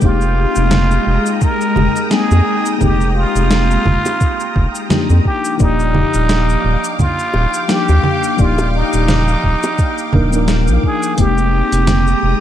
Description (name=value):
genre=sunset chillout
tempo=86 BPM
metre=4/4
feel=swing 56% on 16ths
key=F dorian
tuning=A4 = 440 Hz
part: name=trumpet with plunger mute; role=melody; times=0.0-12.4 s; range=Eb4 to Bb4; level=-19 LUFS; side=equal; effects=tape echo
part: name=mellow FM electric piano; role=accompaniment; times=0.0-12.4 s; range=F3 to G5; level=-19 LUFS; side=moving between left 5 dB and right 4 dB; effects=chorus, auto-pan
part: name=soft string machine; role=sustained chords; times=0.0-12.4 s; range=Ab3 to Eb6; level=-23 LUFS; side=left 1 dB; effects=ensemble chorus
part: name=round analog bass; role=bass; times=0.0-12.3 s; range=Eb1 to F2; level=-15 LUFS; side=equal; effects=none
part: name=dusty soul sampler-style drum kit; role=drums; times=0.0-12.2 s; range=cabasa, congas, hi-hat, snare drum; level=-20 LUFS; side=right 2 dB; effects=overdrive
part: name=electronic kick drum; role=drums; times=0.0-11.3 s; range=none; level=-15 LUFS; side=equal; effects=none
part: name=bongos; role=percussion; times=1.8-9.8 s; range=none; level=-25 LUFS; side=equal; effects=none
room=light reverb, digital ambience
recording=dark, warm production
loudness=-12 LUFS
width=side -11 dB against mid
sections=0.0-12.4 A section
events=none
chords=0.0 Fm11; 5.3 Ebmaj9; 11.2 Fm11